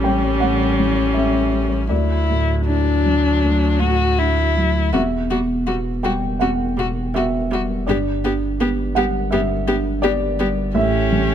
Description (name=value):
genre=neoclassical piano and strings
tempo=82 BPM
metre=4/4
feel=rubato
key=E dorian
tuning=A4 = 438 Hz
part: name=dark violin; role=melody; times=0.0-11.3 s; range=C#4 to G4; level=-22 LUFS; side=left 6 dB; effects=none
part: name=felt-muted upright piano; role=accompaniment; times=0.0-11.3 s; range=D2 to G5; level=-21 LUFS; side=right 1 dB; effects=none
part: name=warm viola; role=accompaniment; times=0.0-11.3 s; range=F#3 to C#4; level=-27 LUFS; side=right 6 dB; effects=none
part: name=pure sine sub bass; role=bass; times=0.0-11.3 s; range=E1 to D2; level=-22 LUFS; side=equal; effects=none
room=little or no reverb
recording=close, detailed microphones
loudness=-16 LUFS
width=side -9 dB against mid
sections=0.0-11.3 A section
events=none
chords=0.0 A7; 1.9 Dadd9; 4.9 Emadd9; 7.9 G; 10.8 A7